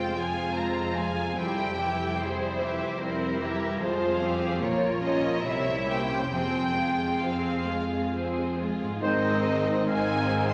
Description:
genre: classical, slow romantic movement for symphony orchestra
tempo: 65-77 BPM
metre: 3/4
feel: rubato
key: F minor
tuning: A4 = 439 Hz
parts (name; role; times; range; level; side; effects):
- rich chamber violin section; melody; 0.0-10.5 s; C5 to C6; -34 LUFS; equal; none
- rich chamber violin section; second line; 0.0-10.5 s; Eb4 to F5; -35 LUFS; equal; none
- rich chamber viola section; accompaniment; 0.0-10.5 s; E3 to F4; -34 LUFS; equal; none
- concert harp; arpeggios; 0.0-10.5 s; F2 to C5; -38 LUFS; equal; none
- rich chamber cello section; bass; 0.0-10.5 s; Ab2 to Bb4; -36 LUFS; equal; none
- warm chamber double bass section; bass; 0.0-10.5 s; Ab1 to F2; -38 LUFS; equal; none
- mellow hollow silver concert flute; second line; 9.0-10.5 s; C5 to Ab5; -36 LUFS; equal; none
- warm clarinet; second line; 9.0-10.5 s; C4; -36 LUFS; equal; none
- mellow bassoon; accompaniment; 9.0-10.5 s; Eb3; -34 LUFS; equal; none
- warm French horn section; sustained chords; 9.0-9.3 s; Ab3 to Eb4; -36 LUFS; equal; none
- clear trumpet section; stabs; 9.0-9.3 s; C5; -33 LUFS; equal; none
- clear oboe; second line; 9.9-10.5 s; F5; -38 LUFS; equal; none
room: wet scoring stage reverb, RT60 1.6 s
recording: none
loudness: -27 LUFS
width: mono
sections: 0.0-9.0 A section; 9.0-10.5 B section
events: none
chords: 0.0 Fm; 1.4 C/F; 3.8 Fm; 4.6 Bbm; 5.4 C7b9; 6.3 Fm; 9.0 Ab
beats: 0.57 | 1.38 2.19 3.00 | 3.80 4.61 5.44 | 6.31 7.22 8.13 | 9.02 9.87

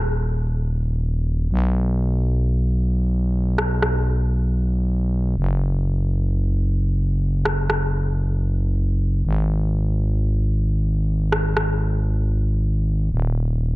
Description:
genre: bass house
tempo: free time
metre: none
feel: none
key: G# minor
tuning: A4 = 439 Hz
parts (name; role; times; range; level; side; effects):
- growling FM bass; bass; 0.0-13.8 s; D#1 to B1; -19 LUFS; equal; tube saturation
- electronic rim click; drums; 3.6-3.9, 7.5-7.8, 11.3-11.6 s; none; -25 LUFS; equal; low-pass filter on snare
room: little or no reverb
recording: none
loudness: -19 LUFS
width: side -20 dB against mid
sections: 0.0-13.8 A section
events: none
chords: none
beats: free time

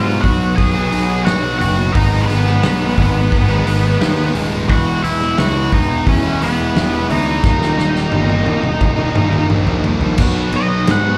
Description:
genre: quiet-loud alternative rock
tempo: 87 BPM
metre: 4/4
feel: straight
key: unclear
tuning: A4 = 435 Hz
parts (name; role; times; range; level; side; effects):
- octave-fuzz lead guitar; melody; 0.0-11.2 s; Cb4 to Ab5; -22 LUFS; equal; distortion
- string machine, cellos; sustained chords; 0.0-11.2 s; D#4 to D#6; -33 LUFS; equal; none
- distorted electric guitar; riff; 0.0-11.2 s; Eb2 to F#4; -28 LUFS; equal; overdrive, slapback echo
- distorted electric guitar; riff; 0.0-11.2 s; Eb2 to B3; -31 LUFS; equal; none
- sludgy distorted guitar; riff; 0.0-11.2 s; Eb2 to F#4; -24 LUFS; equal; overdrive
- overdriven picked electric bass; bass; 0.0-11.2 s; Eb1 to Ab2; -20 LUFS; equal; none
- loose indie drum kit; drums; 0.2-11.0 s; crash cymbal, hi-hat, kick drum, ride cymbal, snare drum, toms; -22 LUFS; equal; none
room: little or no reverb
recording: live gig heard through the venue's PA, club reverb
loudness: -15 LUFS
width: mono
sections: 0.0-10.2 A section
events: drum fill 7.4-10.2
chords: 0.0 B; 2.0 Abm; 4.7 E; 7.4 Eb; 10.2 B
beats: 0.58 1.27 | 1.95 2.64 3.32 4.01 | 4.70 5.38 6.07 6.76 | 7.44 8.13 8.82 9.50 | 10.19 10.88

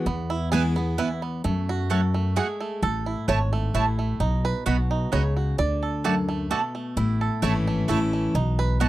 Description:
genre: bluegrass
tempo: 130 BPM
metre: 3/4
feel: straight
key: E major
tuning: A4 = 440 Hz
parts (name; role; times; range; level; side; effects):
- picked steel-string acoustic guitar; accompaniment; 0.0-8.9 s; E2 to E4; -27 LUFS; left 2 dB; none
- bluegrass banjo; melody; 0.1-8.9 s; A3 to D5; -30 LUFS; right 5 dB; none
- upright bass; bass; 0.1-8.9 s; G#1 to F#2; -26 LUFS; equal; none
- mandolin; stabs; 0.5-8.9 s; A3 to B5; -26 LUFS; right 6 dB; none
room: little or no reverb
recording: dry, close 1970s-style studio recording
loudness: -22 LUFS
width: side -15 dB against mid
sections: 0.1-8.9 A section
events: five-string banjo solo 0.1-8.9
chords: 0.1 E; 1.4 F#m; 2.8 A; 4.2 B; 5.6 D; 7.0 A; 8.4 B7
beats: | 0.07 0.53 0.99 | 1.45 1.91 2.37 | 2.83 3.29 3.75 | 4.21 4.67 5.13 | 5.59 6.05 6.51 | 6.97 7.43 7.89 | 8.35 8.81

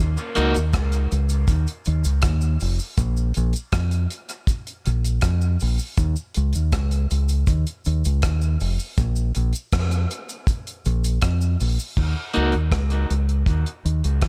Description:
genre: dub reggae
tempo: 80 BPM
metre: 4/4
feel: straight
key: unclear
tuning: A4 = 440 Hz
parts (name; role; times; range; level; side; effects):
- deep dub fingered electric bass; bass; 0.0-14.3 s; F1 to F2; -23 LUFS; equal; none
- cabasa; percussion; 0.2-12.0 s; none; -40 LUFS; equal; none
- electric guitar at the edge of break-up; accompaniment; 0.4-0.6, 12.3-12.5 s; Bb3 to Gb4; -29 LUFS; equal; dub echo
- deep reggae drum kit; drums; 0.4-14.3 s; crash cymbal, hi-hat, kick drum, rim click; -27 LUFS; equal; none
room: studio ambience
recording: none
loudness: -22 LUFS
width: mono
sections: 0.0-12.0 A section; 12.0-14.3 B section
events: break 0.0-12.0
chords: 0.0 N.C.; 3.0 Bb5; 6.0 Dbsus2; 9.0 Bb5; 12.0 N.C.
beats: 0.74 1.48 2.23 | 2.98 3.73 4.48 5.23 | 5.97 6.72 7.47 8.22 | 8.97 9.72 10.47 11.22 | 11.97 12.72 13.47 14.22

